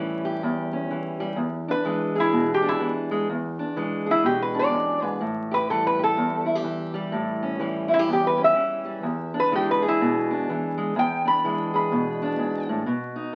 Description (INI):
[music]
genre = acoustic country blues, solo or duo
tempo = 125 BPM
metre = 4/4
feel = swing 62% on 8ths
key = E mixolydian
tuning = A4 = 440 Hz
[part]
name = fingerpicked steel-string acoustic guitar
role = accompaniment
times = 0.0-13.3 s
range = E2 to G#4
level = -28 LUFS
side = equal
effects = none
[part]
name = lap resonator guitar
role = melody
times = 1.7-12.7 s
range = E4 to B5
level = -25 LUFS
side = equal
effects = none
[sound]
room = wet studio reverb, RT60 0.7 s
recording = very old 78 rpm record, vinyl crackle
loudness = -24 LUFS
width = mono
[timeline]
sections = 0.0-13.3 A section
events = none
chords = 0.0 A7; 1.4 E7; 5.2 A7; 9.0 E7